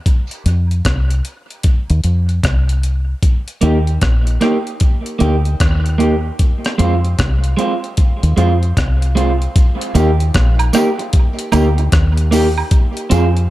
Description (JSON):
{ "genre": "dub reggae", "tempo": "76 BPM", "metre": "4/4", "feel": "swing 64% on 16ths", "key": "Eb major", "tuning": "A4 = 440 Hz", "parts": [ { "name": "breakbeat sampler-style drum kit", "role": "drums", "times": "0.1-13.5 s", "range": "hi-hat, kick drum, rim click", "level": "-15 LUFS", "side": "equal", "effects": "none" }, { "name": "deep dub fingered electric bass", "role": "bass", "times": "0.5-13.5 s", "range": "Bb1 to F2", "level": "-14 LUFS", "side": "equal", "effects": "none" }, { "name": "electric guitar at the edge of break-up", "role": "accompaniment", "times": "3.6-13.3 s", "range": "Ab3 to Ab4", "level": "-18 LUFS", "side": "right 2 dB", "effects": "dub echo" }, { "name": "tambourine and woodblock", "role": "percussion", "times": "9.9-13.3 s", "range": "none", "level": "-26 LUFS", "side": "right 7 dB", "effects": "dub echo" } ], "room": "digital ambience", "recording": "none", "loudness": "-13 LUFS", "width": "side -16 dB against mid", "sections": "0.0-9.6 A section; 9.6-13.5 B section", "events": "break 0.0-9.6; part muted 12.7-13.5", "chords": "0.1 F5; 3.2 Eb; 6.4 Fm; 9.6 Eb; 12.7 Fm" }